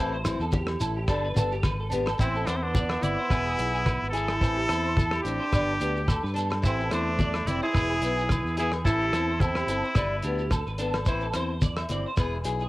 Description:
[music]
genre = highlife guitar band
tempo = 108 BPM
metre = 4/4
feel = swing 55% on 16ths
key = A minor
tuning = A4 = 440 Hz
[part]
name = picked acoustic archtop guitar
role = accompaniment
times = 0.0-12.6 s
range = E3 to G#4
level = -32 LUFS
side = left 3 dB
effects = none
[part]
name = clean electric guitar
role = arpeggios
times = 0.0-12.7 s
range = G4 to E5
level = -34 LUFS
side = right 2 dB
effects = ensemble chorus
[part]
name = fingered electric bass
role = bass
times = 0.0-12.7 s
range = E1 to G2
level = -31 LUFS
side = equal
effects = none
[part]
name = damped 70s drum kit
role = drums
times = 0.2-12.6 s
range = hi-hat, kick drum, rim click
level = -28 LUFS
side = equal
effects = none
[part]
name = agogo bells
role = percussion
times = 0.2-12.3 s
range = none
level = -40 LUFS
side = left 2 dB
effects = none
[part]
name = congas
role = percussion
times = 0.3-12.5 s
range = none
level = -33 LUFS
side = left 1 dB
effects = none
[part]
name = shekere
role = percussion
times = 0.3-12.7 s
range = none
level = -32 LUFS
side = right 1 dB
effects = none
[part]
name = trumpet with straight mute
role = melody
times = 2.2-10.5 s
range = D4 to A4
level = -30 LUFS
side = left 1 dB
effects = cassette tape
[part]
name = breathy alto saxophone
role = second line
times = 2.2-10.0 s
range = A3 to E4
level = -31 LUFS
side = right 2 dB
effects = none
[sound]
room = light reverb, small room ambience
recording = home recording on cassette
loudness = -24 LUFS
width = side -18 dB against mid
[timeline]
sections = 0.0-2.2 A section; 2.2-12.7 B section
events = none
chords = 0.0 Am; 1.1 G; 2.2 Am; 3.3 E; 4.4 Am; 5.5 G; 6.6 Am; 7.7 E; 8.9 Am; 10.0 G; 11.1 Am; 12.2 E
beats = 0.52 1.08 1.63 | 2.19 2.74 3.30 3.86 | 4.41 4.97 5.52 6.08 | 6.63 7.19 7.75 8.30 | 8.86 9.41 9.97 10.52 | 11.08 11.63 12.19

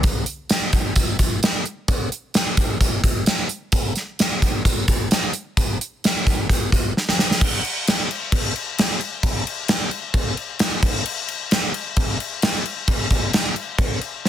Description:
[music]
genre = rock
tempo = 131 BPM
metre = 4/4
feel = straight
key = none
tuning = none
[part]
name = gated 80s drum kit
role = drums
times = 0.0-14.3 s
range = crash cymbal, hi-hat, kick drum, snare drum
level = -18 LUFS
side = equal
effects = soft clipping on kick
[sound]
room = light reverb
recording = dense, heavily limited modern master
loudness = -19 LUFS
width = side -10 dB against mid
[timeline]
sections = 0.0-7.4 A section; 7.4-14.3 B section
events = drum fill 6.9-7.4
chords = none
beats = | 0.04 0.50 0.96 1.43 | 1.89 2.35 2.81 3.27 | 3.73 4.19 4.65 5.11 | 5.57 6.03 6.49 6.95 | 7.40 7.86 8.32 8.77 | 9.23 9.69 10.14 10.60 | 11.05 11.51 11.96 12.42 | 12.87 13.33 13.78 14.24

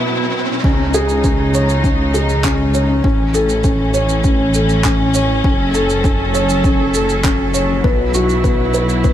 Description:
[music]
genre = piano and strings electronica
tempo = 100 BPM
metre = 4/4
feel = straight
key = C# minor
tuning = A4 = 435 Hz
[part]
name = rich studio string section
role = sustained chords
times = 0.0-9.1 s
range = B2 to A4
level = -20 LUFS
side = equal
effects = sidechain pumping
[part]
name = felt-muted upright piano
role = riff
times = 0.0-9.1 s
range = B3 to C#5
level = -17 LUFS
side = left 1 dB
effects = ping-pong delay
[part]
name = riser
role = sound effects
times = 0.0-0.6 s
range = none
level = -25 LUFS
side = right 2 dB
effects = none
[part]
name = dark detuned saw bass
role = bass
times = 0.6-9.1 s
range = F#1 to C#2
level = -19 LUFS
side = equal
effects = sidechain pumping
[part]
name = electronic kick drum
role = drums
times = 0.6-9.1 s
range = none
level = -17 LUFS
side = equal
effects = none
[part]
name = electronic shaker and handclaps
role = drums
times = 0.9-9.1 s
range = none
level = -25 LUFS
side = right 3 dB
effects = none
[sound]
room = light reverb, digital ambience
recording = none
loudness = -13 LUFS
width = side -11 dB against mid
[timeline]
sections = 0.6-9.1 A section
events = break 0.0-0.6; riser 0.0-0.6; drop 0.6-9.1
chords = 0.0 Bsus4; 0.6 C#sus2; 3.0 A; 5.4 F#m; 7.8 Bsus4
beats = 0.04 | 0.64 1.24 1.84 2.44 | 3.04 3.64 4.24 4.84 | 5.44 6.04 6.64 7.24 | 7.84 8.44 9.04

